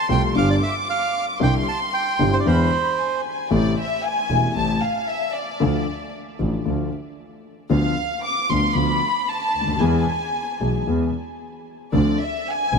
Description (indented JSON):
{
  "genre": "tango",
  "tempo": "114 BPM",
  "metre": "4/4",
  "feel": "rubato",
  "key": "A harmonic minor from 3.5 s",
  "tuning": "A4 = 439 Hz",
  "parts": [
    { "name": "bandoneon", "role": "melody", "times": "0.0-3.2 s", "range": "C5 to A5", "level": "-24 LUFS", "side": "right 6 dB", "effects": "none" },
    { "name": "warm chamber violin section", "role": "second line", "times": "0.0-12.8 s", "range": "D5 to D6", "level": "-24 LUFS", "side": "left 2 dB", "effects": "none" },
    { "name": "warm concert grand piano", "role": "accompaniment", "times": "0.1-12.8 s", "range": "E1 to A4", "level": "-24 LUFS", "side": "left 5 dB", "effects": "none" },
    { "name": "clear double bass", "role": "bass", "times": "0.1-12.8 s", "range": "E1 to E2", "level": "-22 LUFS", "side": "right 3 dB", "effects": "none" }
  ],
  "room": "moderate huge ambient reverb, RT60 4.9 s",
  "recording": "none",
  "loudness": "-19 LUFS",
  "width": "side -5 dB against mid",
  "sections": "0.0-3.5 A section; 3.5-12.8 B section",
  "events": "violin section solo 3.5-12.8",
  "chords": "0.4 G7; 1.4 Cadd9; 2.5 E7; 3.5 Am; 5.6 Dm; 7.7 Bdim/D; 9.8 E; 11.9 Dm7",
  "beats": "0.36 0.88 | 1.41 1.93 2.45 2.98 | 3.51 4.03 4.56 5.08 | 5.61 6.13 6.66 7.18 | 7.71 8.23 8.76 9.29 | 9.81 10.34 10.87 11.40 | 11.93 12.46"
}